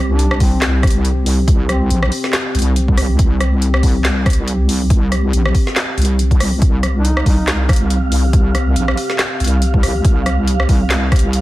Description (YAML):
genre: deep dubstep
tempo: 140 BPM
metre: 4/4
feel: swing 57% on 16ths, half-time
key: unclear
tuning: A4 = 439 Hz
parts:
  - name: dark analog pad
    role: sustained chords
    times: 0.0-11.4 s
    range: C4 to G4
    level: -24 LUFS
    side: left 1 dB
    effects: chorus, phaser
  - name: wobble bass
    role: bass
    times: 0.0-11.4 s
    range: Bb1 to C2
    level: -15 LUFS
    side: equal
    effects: chorus
  - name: mellow duduk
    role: melody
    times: 0.1-2.0, 7.0-7.6 s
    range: C4 to Eb4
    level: -26 LUFS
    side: equal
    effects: dub echo
  - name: deep house drum kit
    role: drums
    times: 0.2-11.4 s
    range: handclaps, hi-hat, rim click, snare drum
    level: -20 LUFS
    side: equal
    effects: none
  - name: electronic kick drum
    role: drums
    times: 0.4-11.2 s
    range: none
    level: -13 LUFS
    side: equal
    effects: none
  - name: wind-like tuned noise texture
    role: texture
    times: 6.9-11.4 s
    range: F5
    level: -27 LUFS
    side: right 4 dB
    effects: built-in reverb
room: little or no reverb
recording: dense, heavily limited modern master, vinyl crackle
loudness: -12 LUFS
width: side -17 dB against mid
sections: 0.0-11.4 A section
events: none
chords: 0.0 Bbsus2 (rootless)